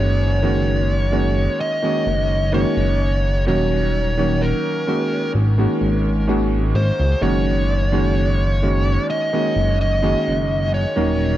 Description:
vaporwave; 64 BPM; 4/4; straight; Gb major; A4 = 444 Hz
fuzz lead guitar; melody; 0.0-11.4 s; Bb4 to Eb5; -23 LUFS; equal; distortion, tape echo
warm electric grand piano; accompaniment; 0.0-11.4 s; Eb3 to Gb4; -21 LUFS; right 1 dB; wide subtle chorus, analog delay
chorused synth bass; bass; 0.0-11.4 s; Eb1 to Db2; -19 LUFS; equal
light reverb; echo-heavy mix, cassette tape; -16 LUFS; side -13 dB against mid
0.0-11.4 A section
0.0 Gb69; 3.5 Ebm7; 5.3 Ab9sus4; 7.2 Gb69

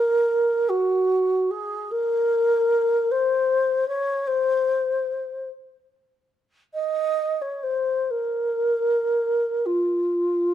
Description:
classical, free, expressive piece for unaccompanied alto flute; 36-53 BPM (dotted quarters); 6/8; rubato; Bb minor; A4 = 440 Hz
mellow wooden-headed alto flute; solo; 0.0-10.5 s; F4 to Eb5; -20 LUFS; equal
light reverb; close, detailed microphones; -20 LUFS; side -11 dB against mid
0.0-10.5 A section

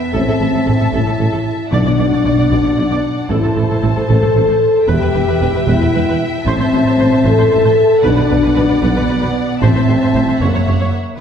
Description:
cinematic, epic orchestral film score; 76 BPM (dotted quarters); 6/8; straight; A4 = 440 Hz
warm symphonic violin section; melody; 0.0-11.0 s; F#5 to A5; -28 LUFS; left 3 dB
clear symphonic violin section; second line; 0.0-11.0 s; C5 to E5; -25 LUFS; left 1 dB
mellow French horn section; sustained chords; 0.0-11.2 s; A#3 to A4; -15 LUFS; left 2 dB
warm symphonic viola section; accompaniment; 0.1-10.9 s; A4 to D5; -24 LUFS; right 1 dB
rich symphonic double bass section; bass; 0.1-10.7 s; E1 to B1; -20 LUFS; right 1 dB
warm symphonic cello section; bass; 0.1-10.9 s; E2 to B2; -19 LUFS; right 2 dB
warm tuba; bass; 0.1-10.7 s; E1 to B1; -22 LUFS; right 2 dB
timpani; percussion; 1.7-2.5 s; B2; -21 LUFS; equal
wet scoring stage reverb, RT60 1.4 s; heard from further back in the room, lossy compression artefacts; -11 LUFS; side -8 dB against mid
0.0-11.2 A section
0.1 Am; 1.7 Bm; 3.3 Am; 4.9 Em; 6.5 Am; 8.0 Bm; 9.6 Am; 10.4 F#7

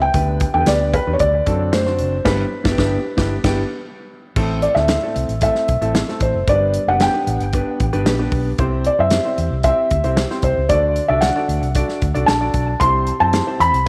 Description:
uptempo 1960s-style soul; 114 BPM; 4/4; straight; G major; A4 = 439 Hz
felt-muted upright piano; melody; 0.0-13.9 s; B4 to C6; -21 LUFS; equal; tape echo
warm concert grand piano; accompaniment; 0.0-13.9 s; G2 to G5; -26 LUFS; equal
vintage muted fingered electric bass; bass; 0.0-13.9 s; F#1 to F#2; -24 LUFS; equal
natural country drum kit; drums; 0.1-13.9 s; crash cymbal, hi-hat, kick drum, snare drum; -25 LUFS; equal
mellow electric guitar; stabs; 0.7-13.4 s; A3 to D5; -28 LUFS; equal
light reverb, small room ambience; -18 LUFS; mono
0.0-4.4 A section; 4.4-13.9 B section
band accent 2.3-4.4; grand piano fill 3.3-4.4
0.1 G/D; 1.2 D7; 2.3 G6; 4.4 Am; 6.5 G; 8.6 C; 10.7 D; 12.8 C

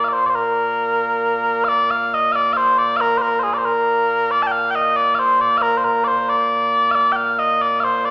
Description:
scottish traditional, Scottish pipe music; 91 BPM (dotted quarters); 6/8; straight; Bb major; A4 = 438 Hz
mellow small bagpipes; solo; 0.0-8.1 s; Bb2 to A5; -15 LUFS; equal
wet recital hall reverb, RT60 1.6 s; recorded in a church or concert hall, small speaker sound; -15 LUFS; side -25 dB against mid
0.0-1.7 A section; 1.7-8.1 B section

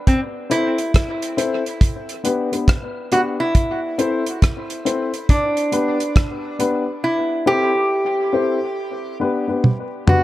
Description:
dub reggae; 69 BPM; 4/4; swing 64% on 16ths; A minor; A4 = 441 Hz
lap resonator guitar; melody; 0.1-10.2 s; C4 to G4; -21 LUFS; equal; dub echo
damped 70s drum kit; drums; 0.1-10.2 s; hi-hat, kick drum, rim click, toms; -17 LUFS; equal
dark upright piano; stabs; 0.5-10.2 s; B3 to C5; -23 LUFS; left 3 dB; dub echo
light reverb, small room ambience; echo-heavy mix; -17 LUFS; side -15 dB against mid
0.0-10.2 A section
drum fill 9.6-10.2
0.1 Am; 1.8 G; 3.6 Am; 5.3 G; 7.0 Am; 8.8 G

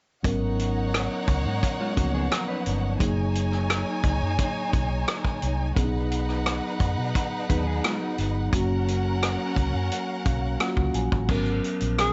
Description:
lush 1970s-style soul; 87 BPM; 4/4; straight; G# dorian; A4 = 440 Hz
rich studio violin section; second line; 0.2-11.2 s; C#4 to G#5; -34 LUFS; equal
mellow tine electric piano; accompaniment; 0.2-12.1 s; E#3 to G#5; -32 LUFS; equal
vintage muted fingered electric bass; bass; 0.2-12.1 s; F#1 to B2; -30 LUFS; equal
vintage drum kit; drums; 0.2-12.1 s; crash cymbal, hi-hat, kick drum, rim click; -30 LUFS; equal
mellow electric guitar; riff; 1.8-3.0, 7.5-8.5 s; F#3 to B4; -36 LUFS; equal
breathy tenor saxophone; melody; 12.0-12.1 s; G#4; -24 LUFS; equal
light reverb; nothing above 7.8 kHz; -26 LUFS; mono
0.2-11.3 A section
tine electric piano fill 9.9-11.3
0.2 G#m11; 3.0 F#69; 5.8 B6; 8.5 F#maj7; 11.3 G#m11

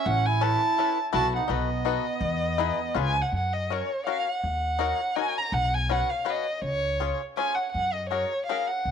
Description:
musette waltz; 164 BPM; 3/4; swing 55% on 8ths; E major, F# major from 3.3 s; A4 = 440 Hz
dark violin; melody; 0.0-8.9 s; C#5 to A#5; -27 LUFS; right 1 dB
accordion; second line; 0.0-3.0 s; B3 to F#4; -31 LUFS; right 11 dB
upright bass; bass; 0.1-8.9 s; A1 to F#2; -29 LUFS; equal; transformer saturation
bluegrass banjo; accompaniment; 0.4-8.7 s; C#4 to C#5; -30 LUFS; left 12 dB
light reverb, small room ambience; 1960s-style stereo with parts hard left and right; -24 LUFS; side -7 dB against mid
0.0-3.3 A section; 3.3-8.9 B section
0.1 Aadd9; 1.1 B7sus4; 1.5 B7; 2.2 Emaj7; 3.0 C#7; 3.3 F#; 4.4 D#m7; 5.5 Bsus2; 6.6 C#; 7.7 F#add9

